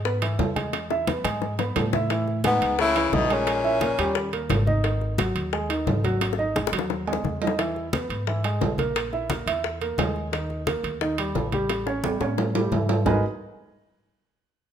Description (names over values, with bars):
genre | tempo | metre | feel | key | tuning
Afro-Cuban jazz | 175 BPM | 4/4 | straight | G# minor | A4 = 441 Hz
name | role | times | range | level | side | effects
dark baby grand piano | accompaniment | 0.0-13.2 s | D#3 to E5 | -28 LUFS | right 3 dB | none
upright bass | bass | 0.0-13.2 s | G#1 to A2 | -29 LUFS | equal | none
bongos | percussion | 0.1-13.1 s | none | -31 LUFS | left 10 dB | none
congas | percussion | 0.1-13.1 s | none | -31 LUFS | left 2 dB | none
timbales | percussion | 0.2-13.1 s | none | -30 LUFS | right 4 dB | none
breathy tenor saxophone | melody | 2.5-4.3 s | B3 to E4 | -23 LUFS | left 1 dB | none
bright baritone saxophone | second line | 2.5-4.3 s | G#2 to C#3 | -28 LUFS | left 7 dB | none
room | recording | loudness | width
moderate large studio reverb, RT60 1.2 s | minimal, uncompressed stereo recording | -22 LUFS | side -9 dB against mid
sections
0.0-7.6 A section; 7.6-13.1 B section; 13.1-14.4 C section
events
drum fill 0.7-2.1, 6.2-7.6, 11.7-13.1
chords
0.0 E; 2.1 Amaj9; 3.5 A#m7b5; 4.2 D#; 4.8 G#5; 7.6 E; 9.0 Emaj7#11; 10.3 D#; 11.7 A7; 13.1 G#m9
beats
0.05 0.39 | 0.73 1.08 1.42 1.76 | 2.10 2.44 2.79 3.13 | 3.47 3.81 4.16 4.50 | 4.84 5.19 5.53 5.87 | 6.22 6.56 6.90 7.25 | 7.59 7.93 8.27 8.62 | 8.96 9.30 9.64 9.98 | 10.33 10.67 11.01 11.35 | 11.70 12.04 12.38 12.72 | 13.06